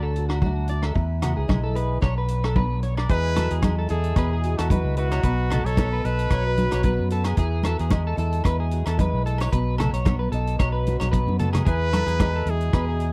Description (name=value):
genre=highlife guitar band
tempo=112 BPM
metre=4/4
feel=swing 54% on 16ths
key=unclear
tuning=A4 = 437 Hz
part: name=fingerpicked swing-style acoustic guitar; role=accompaniment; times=0.0-13.1 s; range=B2 to B4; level=-34 LUFS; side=equal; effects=none
part: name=electric guitar at the edge of break-up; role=arpeggios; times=0.0-13.1 s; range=F#4 to D5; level=-33 LUFS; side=equal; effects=lush chorus, slapback echo
part: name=fingered electric bass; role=bass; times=0.0-13.1 s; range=B1 to F#2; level=-26 LUFS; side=equal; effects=none
part: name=vintage drum kit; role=drums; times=0.2-13.1 s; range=hi-hat, kick drum, rim click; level=-26 LUFS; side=equal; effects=none
part: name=agogo bells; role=percussion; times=0.3-12.9 s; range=none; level=-40 LUFS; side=equal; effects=none
part: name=congas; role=percussion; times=0.4-12.8 s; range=none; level=-30 LUFS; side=equal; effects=none
part: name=warm trumpet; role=melody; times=3.1-7.1, 11.7-13.1 s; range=F#4 to B4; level=-30 LUFS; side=equal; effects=none
room=small room ambience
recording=dry, close 1970s-style studio recording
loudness=-23 LUFS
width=mono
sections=0.0-3.1 A section; 3.1-13.1 B section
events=drum fill 11.0-11.7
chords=0.0 D; 1.0 E; 2.0 Bm; 3.1 Eadd9; 5.2 B; 7.4 Eadd9; 9.5 B; 11.7 Eadd9